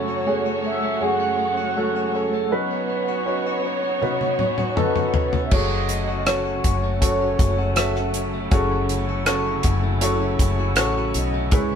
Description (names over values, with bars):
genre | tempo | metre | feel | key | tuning
pop ballad | 80 BPM | 4/4 | straight | unclear | A4 = 439 Hz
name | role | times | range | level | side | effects
mellow horn-like synth lead | melody | 0.0-11.8 s | A4 to F#5 | -25 LUFS | right 1 dB | chorus
warm grand piano | accompaniment | 0.0-11.8 s | F#2 to E5 | -24 LUFS | right 1 dB | none
warm studio string section | sustained chords | 0.0-11.8 s | C#3 to C#5 | -29 LUFS | right 1 dB | none
direct-recorded clean electric guitar | arpeggios | 0.0-11.8 s | F#2 to F#4 | -31 LUFS | left 6 dB | none
damped 70s drum kit | drums | 4.0-11.7 s | crash cymbal, hi-hat, kick drum, rim click, toms | -22 LUFS | equal | none
deep dub fingered electric bass | bass | 5.5-11.8 s | F#1 to C#2 | -25 LUFS | equal | none
room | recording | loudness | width
moderate stone room reverb, RT60 1.1 s | band playing live in one room | -19 LUFS | side -8 dB against mid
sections
0.0-5.5 A section; 5.5-11.8 B section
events
drum fill 4.0-5.5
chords
0.0 F#m; 2.5 Badd9; 5.5 F#m